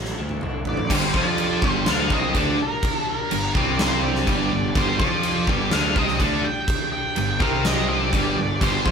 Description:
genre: quiet-loud alternative rock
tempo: 124 BPM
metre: 4/4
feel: straight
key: unclear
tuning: A4 = 439 Hz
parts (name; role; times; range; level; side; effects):
- twelve-string electric guitar; arpeggios; 0.0-0.9 s; D3 to F#4; -34 LUFS; left 2 dB; tremolo
- fuzz picked electric bass; bass; 0.0-8.9 s; G1 to F2; -27 LUFS; equal; overdrive
- huge arena drum kit; drums; 0.0-8.9 s; crash cymbal, kick drum, snare drum, toms; -24 LUFS; equal; none
- octave-fuzz lead guitar; melody; 0.7-8.9 s; Bb4 to G5; -26 LUFS; right 1 dB; distortion
- tonewheel organ; sustained chords; 0.9-8.9 s; D3 to G4; -35 LUFS; equal; none
- cranked stack guitar; riff; 0.9-8.9 s; G2 to F4; -26 LUFS; right 8 dB; overdrive
- high-gain distorted guitar; riff; 0.9-8.9 s; G2 to F4; -26 LUFS; left 8 dB; distortion
room: moderate stone room reverb, RT60 1.4 s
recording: band playing live in one room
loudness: -19 LUFS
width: side -6 dB against mid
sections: 0.9-8.9 A section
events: drum fill 0.0-0.9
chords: 0.0 D; 0.9 G5

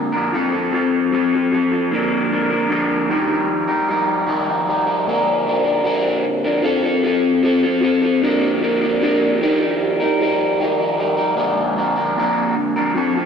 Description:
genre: rock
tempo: 76 BPM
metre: 4/4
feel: straight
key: unclear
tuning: A4 = 440 Hz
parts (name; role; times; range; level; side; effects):
- electric guitar through a small old amp; solo; 0.0-13.3 s; Bb2 to Bb4; -16 LUFS; equal; phaser, analog delay
room: wet plate reverb, RT60 3.5 s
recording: dreamy mix soaked in reverb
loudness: -16 LUFS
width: side -6 dB against mid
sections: 0.0-13.3 A section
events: none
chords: 0.3 F; 1.9 Bb; 3.1 Ebadd9; 5.1 Bb; 6.6 F; 8.2 Bb; 9.4 Ebadd9; 11.4 Bb

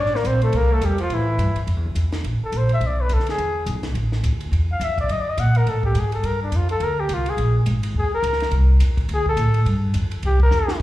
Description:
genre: jazz, small-group swing and bop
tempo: 210 BPM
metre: 4/4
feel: swing 59% on 8ths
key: F major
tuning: A4 = 441 Hz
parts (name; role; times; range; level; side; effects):
- warm flugelhorn; melody; 0.0-10.8 s; D4 to Gb5; -24 LUFS; left 1 dB; slapback echo
- breathy tenor saxophone; second line; 0.0-1.6 s; E3 to D4; -27 LUFS; right 2 dB; slapback echo
- upright bass; bass; 0.0-10.8 s; Ab1 to Bb2; -20 LUFS; equal; none
- compact cocktail drum kit; drums; 0.1-10.8 s; hi-hat, kick drum, ride cymbal, snare drum; -31 LUFS; equal; none
room: light reverb, studio ambience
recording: live gig heard through the venue's PA, club reverb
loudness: -18 LUFS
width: side -15 dB against mid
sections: 0.0-1.7 A section; 1.7-10.8 B section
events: flugelhorn solo 1.7-10.8; drum fill 10.5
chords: 0.0 Gmadd9 (rootless); 0.5 C6; 1.7 Fmaj7 (rootless); 2.8 Bm7; 3.4 E; 4.0 A5; 5.1 Gbmadd9; 6.2 G7sus4; 7.4 Absus2; 7.9 Eb5; 8.5 C; 9.1 D5; 9.7 Fsus2; 10.2 C7

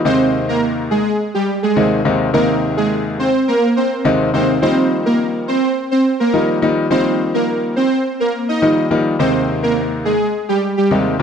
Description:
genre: pop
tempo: 105 BPM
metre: 4/4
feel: straight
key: unclear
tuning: A4 = 444 Hz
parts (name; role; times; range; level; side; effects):
- clear concert grand piano; accompaniment; 0.0-11.2 s; Eb2 to Eb4; -16 LUFS; left 2 dB; none
- soft supersaw; melody; 0.1-11.0 s; G3 to Eb5; -16 LUFS; right 2 dB; none
room: light reverb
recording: dry, gritty hardware recording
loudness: -14 LUFS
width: side -7 dB against mid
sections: 0.0-11.2 A section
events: none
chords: 0.1 Ab/Eb; 4.6 Ebadd9; 9.2 Ab/Eb

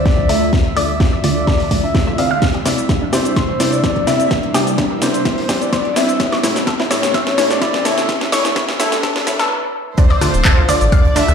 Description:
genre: progressive house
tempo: 127 BPM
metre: 4/4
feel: straight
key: D minor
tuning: A4 = 440 Hz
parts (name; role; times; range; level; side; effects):
- soft octave-layered synth lead; melody; 0.0-11.3 s; A4 to F5; -21 LUFS; left 2 dB; chorus, sidechain pumping, dub echo
- lush unison pad; sustained chords; 0.0-11.3 s; D2 to A4; -25 LUFS; right 1 dB; chorus, sidechain pumping
- riser; sound effects; 0.0-9.5 s; none; -27 LUFS; right 1 dB; none
- drifting glass-harmonics texture; texture; 0.0-9.5 s; E5; -32 LUFS; right 2 dB; chorus, built-in reverb, sidechain pumping
- analog pluck; arpeggios; 0.1-11.2 s; C4 to F5; -23 LUFS; equal; chorus, sidechain pumping, dub echo
- electronic kick drum; drums; 0.1-11.0 s; none; -16 LUFS; equal; none
- house drum kit; drums; 0.1-11.3 s; handclaps, hi-hat, ride cymbal, rim click, shaker, snare drum; -20 LUFS; left 1 dB; none
- wide unison pluck; stabs; 0.3-11.2 s; A2 to E5; -22 LUFS; equal; auto-pan, sidechain pumping, dub echo
- warm symphonic violin section; second line; 10.0-11.3 s; C5 to E5; -25 LUFS; right 1 dB; sidechain pumping, dub echo
- modern studio drum kit; drums; 10.0-11.3 s; hi-hat, snare drum; -36 LUFS; left 3 dB; none
- round analog bass; bass; 10.1-11.3 s; D1 to D2; -16 LUFS; equal; sidechain pumping
room: wet digital room reverb, RT60 1.0 s, digital ambience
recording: played on a big sound system in a bare room, large studio reverb, high-pass filter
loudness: -13 LUFS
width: side -7 dB against mid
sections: 0.0-10.0 A section; 10.0-11.3 B section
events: build-up 0.0-10.0; drum fill 0.0-9.5; filter sweep on synth arpeggio sound 0.0-10.0; filter sweep on synth pluck 0.0-10.0; filter sweep on analog synth pad 0.0-10.0; filter sweep 0.0-10.0; stop 9.5-10.0; drop 10.0-11.3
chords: 0.0 Dm; 2.4 Cadd9; 6.2 A; 10.0 Dm

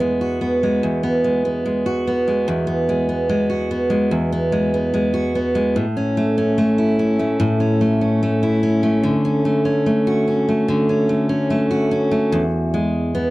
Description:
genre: pop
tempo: 73 BPM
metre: 4/4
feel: straight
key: E mixolydian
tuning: A4 = 440 Hz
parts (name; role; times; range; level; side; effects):
- picked steel-string acoustic guitar; solo; 0.0-13.3 s; E2 to F#4; -16 LUFS; equal; none
room: light reverb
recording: dry, close 1970s-style studio recording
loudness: -16 LUFS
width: side -19 dB against mid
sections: 0.0-12.3 A section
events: none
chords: 0.0 Eadd9; 5.8 A; 9.0 Dmaj7; 12.3 Eadd9

